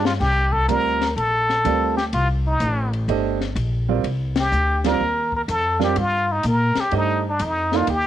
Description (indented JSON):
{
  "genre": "modal jazz",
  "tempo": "125 BPM",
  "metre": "4/4",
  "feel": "swing 68% on 8ths",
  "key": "C dorian",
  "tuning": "A4 = 444 Hz",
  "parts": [
    { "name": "trumpet with plunger mute", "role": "melody", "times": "0.0-8.1 s", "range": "D4 to Bb4", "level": "-21 LUFS", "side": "left 1 dB", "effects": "none" },
    { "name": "clear concert grand piano", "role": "accompaniment", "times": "0.0-7.9 s", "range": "G3 to F5", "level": "-24 LUFS", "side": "right 12 dB", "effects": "none" },
    { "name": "upright bass", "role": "bass", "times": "0.0-8.1 s", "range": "G1 to Bb2", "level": "-23 LUFS", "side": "left 1 dB", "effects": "none" },
    { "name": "compact cocktail drum kit", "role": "drums", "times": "0.1-8.0 s", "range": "crash cymbal, hi-hat, kick drum, ride cymbal, snare drum", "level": "-29 LUFS", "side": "left 6 dB", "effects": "none" }
  ],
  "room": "small room reverb",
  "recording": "1960s-style stereo with parts hard left and right",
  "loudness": "-18 LUFS",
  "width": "side -11 dB against mid",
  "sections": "0.2-8.1 A section",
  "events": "drum fill 0.0; band accent 4.3",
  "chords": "0.2 Cm9"
}